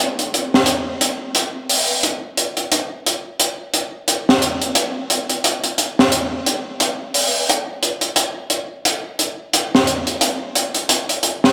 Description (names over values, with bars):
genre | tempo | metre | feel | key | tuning
trip hop | 88 BPM | 4/4 | swing 57% on 16ths | none | none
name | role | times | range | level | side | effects
crunchy breakbeat drum kit | drums | 0.2-11.5 s | hi-hat, snare drum | -18 LUFS | equal | none
room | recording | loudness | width
moderate huge ambient reverb, RT60 5.2 s | dreamy mix soaked in reverb | -19 LUFS | mono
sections
0.0-11.5 A section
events
none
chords
none